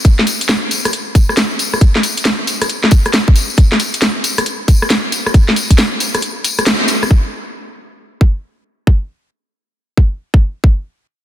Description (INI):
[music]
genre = UK garage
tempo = 136 BPM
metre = 4/4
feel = swing 64% on 16ths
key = none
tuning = none
[part]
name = electronic kick drum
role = drums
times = 0.0-10.8 s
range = none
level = -9 LUFS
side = equal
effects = none
[part]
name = garage drum kit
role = drums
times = 0.0-7.1 s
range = hi-hat, rim click, snare drum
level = -15 LUFS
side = equal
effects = none
[part]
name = tambourine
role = percussion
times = 0.1-7.1 s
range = none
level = -22 LUFS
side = left 4 dB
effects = none
[sound]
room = light reverb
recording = dense, heavily limited modern master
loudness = -12 LUFS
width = side -12 dB against mid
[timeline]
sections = 0.0-7.1 A section; 7.1-11.2 B section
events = break 6.2-7.1; band accent 6.7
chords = none